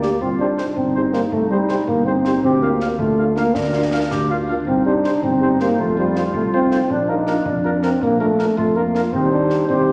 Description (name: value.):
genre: military-style march for wind band.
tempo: 108 BPM (dotted quarters).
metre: 6/8.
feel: straight.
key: Bb major.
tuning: A4 = 440 Hz.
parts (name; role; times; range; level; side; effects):
warm cornet; melody; 0.0-9.9 s; Bb4 to F5; -30 LUFS; equal; none.
mellow woodwind section; second line; 0.0-9.9 s; D4 to Bb4; -28 LUFS; equal; none.
warm euphonium; second line; 0.0-9.9 s; G3 to Eb4; -21 LUFS; equal; none.
dark French horn section; accompaniment; 0.0-9.9 s; G3 to G4; -28 LUFS; equal; none.
dark tuba; bass; 0.0-9.9 s; G1 to F2; -27 LUFS; equal; none.
concert snare drum and concert bass drum; drums; 0.0-9.8 s; none; -35 LUFS; equal; none.
room: wet scoring stage reverb, RT60 1.5 s.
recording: none.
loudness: -18 LUFS.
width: mono.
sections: 0.0-9.9 A section.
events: none.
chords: 0.2 Cm; 2.4 Bb/D; 4.7 Cm; 5.8 F7; 6.9 Bb; 9.1 Cm/Eb.